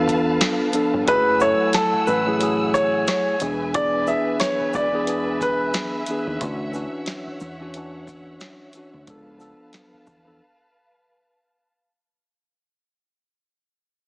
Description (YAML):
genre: hip hop, boom-bap hip-hop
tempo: 90 BPM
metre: 4/4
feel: swing 57% on 16ths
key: unclear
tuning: A4 = 440 Hz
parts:
  - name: mellow tine electric piano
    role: accompaniment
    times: 0.0-10.4 s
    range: E3 to A4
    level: -24 LUFS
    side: equal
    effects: high-pass filter, low-pass filter
  - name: warm studio string section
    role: sustained chords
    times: 0.0-11.7 s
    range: A3 to E6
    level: -30 LUFS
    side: equal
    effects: high-pass filter, low-pass filter
  - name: deep dub fingered electric bass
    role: bass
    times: 0.0-10.4 s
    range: E1 to E2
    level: -31 LUFS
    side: equal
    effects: none
  - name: booming analog drum machine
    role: drums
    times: 0.1-10.3 s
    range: hi-hat, kick drum, shaker, snare drum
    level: -26 LUFS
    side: equal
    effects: none
  - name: bright upright piano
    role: melody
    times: 1.1-6.4 s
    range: A4 to E5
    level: -20 LUFS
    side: equal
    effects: high-pass filter, low-pass filter
  - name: tube shaker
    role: percussion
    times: 1.1-10.3 s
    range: none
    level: -44 LUFS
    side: right 1 dB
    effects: none
room: light reverb, studio reverb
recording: heavily compressed radio sound, multiband compression, small speaker sound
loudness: -19 LUFS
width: side -32 dB against mid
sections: 0.0-11.7 A section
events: fade-out 0.0-11.7; break 10.4-11.7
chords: 0.0 C#7b9b13 (rootless); 1.1 F#m9; 3.4 E7; 6.4 Dmaj9; 9.1 C#7b9b13